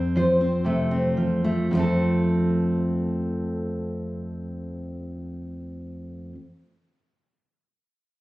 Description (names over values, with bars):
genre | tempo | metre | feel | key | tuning
folk | 109 BPM | 4/4 | straight | F major | A4 = 439 Hz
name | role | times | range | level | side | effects
fingerpicked steel-string acoustic guitar | accompaniment | 0.0-6.4 s | F2 to C5 | -23 LUFS | equal | none
room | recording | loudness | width
moderate large studio reverb, RT60 1.0 s | recorded on a phone in the room, studio reverb | -22 LUFS | side -18 dB against mid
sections
0.0-1.7 A section; 1.7-6.1 B section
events
slowing down 0.0-1.7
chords
0.0 F